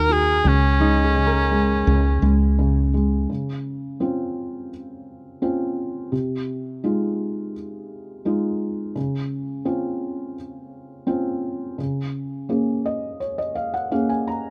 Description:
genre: acoustic folk-pop ballad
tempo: 85 BPM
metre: 4/4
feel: straight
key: Db major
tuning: A4 = 438 Hz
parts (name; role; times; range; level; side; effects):
- warm cor anglais; melody; 0.0-2.6 s; Db4 to Bb4; -23 LUFS; equal; tape echo
- felt-muted upright piano; accompaniment; 0.0-14.5 s; C3 to Bb5; -26 LUFS; equal; none
- woody fretless electric bass; bass; 0.0-3.3 s; Db2 to Eb2; -22 LUFS; equal; none
- concert harp; arpeggios; 0.8-3.5 s; Eb4 to Bb4; -29 LUFS; equal; none
room: little or no reverb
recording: close, detailed microphones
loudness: -23 LUFS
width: mono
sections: 0.0-3.3 A section; 3.3-14.5 B section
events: none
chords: 0.4 Db5; 3.3 Dbmaj7; 6.1 Fm7/C; 9.0 Dbmaj7; 11.8 Bbm7/Db

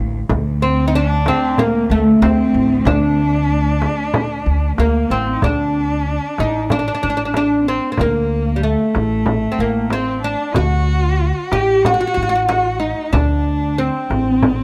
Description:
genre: Arabic maqam ensemble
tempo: 93 BPM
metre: 4/4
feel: straight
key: D maqam hijaz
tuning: A4 = 437 Hz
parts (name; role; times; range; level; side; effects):
- upright bass; bass; 0.0-14.6 s; A1 to D2; -22 LUFS; equal; none
- clear cello; drone; 0.0-5.5 s; D2; -28 LUFS; equal; none
- frame drum; percussion; 0.3-14.6 s; none; -23 LUFS; equal; none
- oud; melody; 0.6-14.6 s; G3 to G4; -20 LUFS; equal; none
- rich cello; second line; 0.6-14.6 s; A3 to G4; -25 LUFS; equal; none
room: light reverb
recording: none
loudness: -17 LUFS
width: mono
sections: 0.0-5.4 A section; 5.4-14.6 B section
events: none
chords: none

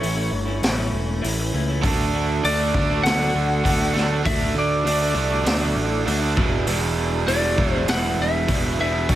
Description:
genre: quiet-loud alternative rock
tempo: 99 BPM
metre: 4/4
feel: straight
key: E minor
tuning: A4 = 440 Hz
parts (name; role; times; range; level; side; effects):
- lightly driven lead guitar; melody; 0.0-9.1 s; C#5 to F#5; -25 LUFS; left 2 dB; none
- electric guitar through a small old amp; arpeggios; 0.0-9.2 s; E2 to F#4; -28 LUFS; left 1 dB; analog chorus
- fuzz picked electric bass; bass; 0.0-9.2 s; E1 to D2; -25 LUFS; equal; overdrive
- raw garage drum kit; drums; 0.0-9.2 s; hi-hat, kick drum, snare drum; -25 LUFS; equal; none
- overdriven electric guitar; riff; 1.8-9.2 s; E2 to D4; -24 LUFS; right 6 dB; none
room: light reverb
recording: none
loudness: -19 LUFS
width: side -13 dB against mid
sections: 0.0-9.2 A section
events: half time 0.0-9.2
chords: 0.0 A; 1.8 D; 6.4 Em7

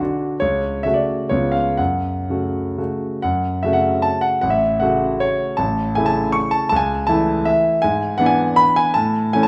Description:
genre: classical, romantic triple-time dance for piano with dotted rhythms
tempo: 116-176 BPM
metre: 3/4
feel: rubato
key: F# minor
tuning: A4 = 439 Hz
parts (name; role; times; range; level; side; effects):
- warm concert grand piano; solo; 0.0-9.5 s; A1 to C#6; -19 LUFS; equal; none
room: moderate recital hall reverb, RT60 1.7 s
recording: recorded in a church or concert hall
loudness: -19 LUFS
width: mono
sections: 0.0-3.2 A section; 3.2-9.5 B section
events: none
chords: 0.4 F#m/C#; 1.3 C#7; 1.8 F#m; 4.4 F#m/A; 5.6 A; 6.7 A/C#; 7.8 E7/G#; 9.0 A

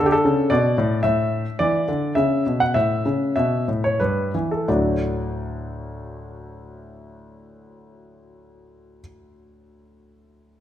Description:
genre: classical-period piano sonatina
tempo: 86-116 BPM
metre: 4/4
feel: rubato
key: D major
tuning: A4 = 440 Hz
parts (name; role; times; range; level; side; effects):
- clear concert grand piano; solo; 0.0-10.6 s; D2 to F#5; -19 LUFS; equal; none
room: moderate recital hall reverb, RT60 1.4 s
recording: close, detailed microphones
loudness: -19 LUFS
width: side -11 dB against mid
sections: 0.0-4.7 A section; 4.7-10.1 B section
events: slowing down 0.0-4.7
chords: 0.0 D5; 2.2 A7; 4.7 D

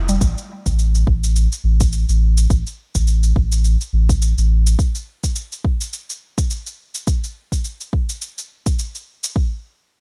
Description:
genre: organic downtempo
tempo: 105 BPM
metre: 4/4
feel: swing 57% on 16ths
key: unclear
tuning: A4 = 440 Hz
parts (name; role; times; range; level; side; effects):
- warm sub bass; bass; 0.0-4.8 s; F1 to A1; -18 LUFS; equal; sidechain pumping
- shaker; drums; 0.1-9.3 s; none; -30 LUFS; equal; none
- electronic kick drum; drums; 0.2-9.5 s; none; -22 LUFS; equal; none
room: little or no reverb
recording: bright 1980s-style digital production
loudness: -19 LUFS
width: mono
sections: 0.0-9.4 A section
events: none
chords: none

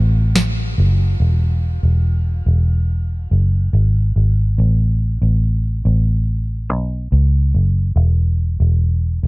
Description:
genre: dream pop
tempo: 71 BPM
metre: 4/4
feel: straight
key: unclear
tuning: A4 = 439 Hz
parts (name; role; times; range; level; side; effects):
- vintage muted fingered electric bass; bass; 0.0-9.3 s; E1 to C#2; -14 LUFS; equal; none
- booming analog drum machine; drums; 0.4-0.6 s; hi-hat, snare drum, tambourine; -23 LUFS; equal; none
room: little or no reverb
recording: dark, warm production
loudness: -14 LUFS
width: side -25 dB against mid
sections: 0.0-1.2 A section; 1.2-9.3 B section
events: none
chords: none

